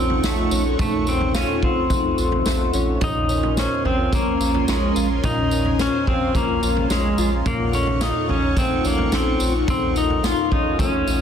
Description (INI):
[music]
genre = dream pop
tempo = 108 BPM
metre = 4/4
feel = straight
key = Bb minor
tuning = A4 = 439 Hz
[part]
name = pedal steel guitar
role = melody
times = 0.0-11.2 s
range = Ab3 to F4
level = -22 LUFS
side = equal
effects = tape echo
[part]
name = phased analog pad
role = sustained chords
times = 0.0-11.2 s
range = Db4 to Db6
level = -27 LUFS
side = left 1 dB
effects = phaser, chorus
[part]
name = fingerpicked plugged-in twelve-string acoustic guitar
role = arpeggios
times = 0.0-11.2 s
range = Bb2 to C5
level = -26 LUFS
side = left 2 dB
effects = ensemble chorus, tape echo
[part]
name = round analog bass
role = bass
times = 0.0-11.2 s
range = Bb1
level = -25 LUFS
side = equal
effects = none
[part]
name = vintage drum kit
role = drums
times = 0.1-11.2 s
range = kick drum, snare drum, tambourine, toms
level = -25 LUFS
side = equal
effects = none
[sound]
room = light reverb, small room reverb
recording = dense, heavily limited modern master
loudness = -18 LUFS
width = side -8 dB against mid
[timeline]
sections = 0.0-11.2 A section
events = none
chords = 0.0 F7b9b13/Bb; 3.0 Bbm9; 7.5 F7b9b13/Bb